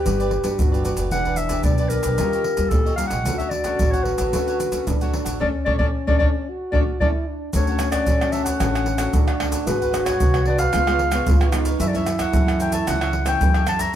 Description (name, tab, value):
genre	samba and choro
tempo	112 BPM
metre	4/4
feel	straight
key	D major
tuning	A4 = 441 Hz
part	warm clarinet	melody	0.0-13.9 s	A4 to Bb5	-24 LUFS	left 2 dB	none
part	breathy trombone	second line	0.0-13.7 s	C#4 to G4	-26 LUFS	right 1 dB	none
part	cavaquinho	accompaniment	0.0-14.0 s	D4 to F#5	-32 LUFS	right 2 dB	none
part	nylon-string guitar	accompaniment	0.0-14.0 s	F#2 to B4	-30 LUFS	left 3 dB	none
part	upright bass	bass	0.0-13.9 s	E1 to F#2	-26 LUFS	equal	none
part	maracas, surdo, pandeiro and tamborim	percussion	0.1-13.9 s	none	-22 LUFS	right 1 dB	none
room	moderate stone room reverb, RT60 1.0 s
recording	band playing live in one room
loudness	-18 LUFS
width	side -10 dB against mid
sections	0.0-7.5 A section; 7.5-14.0 B section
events	band accent 5.4-7.5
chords	0.0 Gmaj7; 1.1 Em7; 2.2 Eb9; 3.3 Dmaj7; 9.7 G#m7b5; 10.7 C#7; 11.8 F#m7